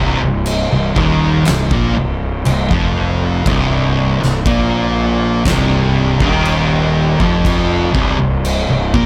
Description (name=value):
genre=stoner and doom metal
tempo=60 BPM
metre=4/4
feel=straight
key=C minor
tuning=A4 = 440 Hz
part: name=fuzz guitar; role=riff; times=0.0-9.1 s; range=C2 to Bb3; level=-17 LUFS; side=equal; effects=distortion
part: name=fuzz fingered electric bass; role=bass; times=0.0-9.1 s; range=C1 to Bb1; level=-21 LUFS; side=equal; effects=overdrive
part: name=oversized low-tuned drum kit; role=drums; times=0.5-9.1 s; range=crash cymbal, kick drum, snare drum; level=-22 LUFS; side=equal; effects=none
room=small room ambience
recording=none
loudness=-15 LUFS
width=mono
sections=0.0-9.1 A section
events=none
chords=0.0 Cm